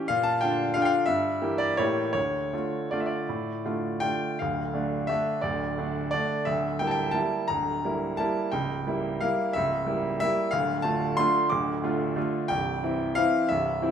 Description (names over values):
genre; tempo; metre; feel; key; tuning
classical, piano waltz; 155-191 BPM; 3/4; rubato; D minor; A4 = 440 Hz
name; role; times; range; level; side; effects
bright grand piano; solo; 0.0-13.9 s; C1 to D6; -24 LUFS; equal; none
room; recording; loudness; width
wet recital hall reverb, RT60 1.4 s; minimal, uncompressed stereo recording; -24 LUFS; side -8 dB against mid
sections
0.0-4.4 A section; 4.4-13.9 B section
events
none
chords
0.1 Bb; 1.1 Edim/G; 1.8 A7b9; 2.2 Dm; 6.5 Em7b5/D; 8.5 C#dim7; 10.5 Dm; 12.5 C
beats
| 0.09 0.42 0.75 | 1.09 1.43 1.80 | 2.16 2.53 2.91 | 3.29 3.65 4.03 | 4.40 4.74 5.09 | 5.44 5.78 6.13 | 6.48 6.82 7.16 | 7.50 7.83 8.18 | 8.52 8.85 9.20 | 9.54 9.86 10.20 | 10.52 10.85 11.18 | 11.52 11.84 12.17 | 12.50 12.83 13.16 | 13.48 13.80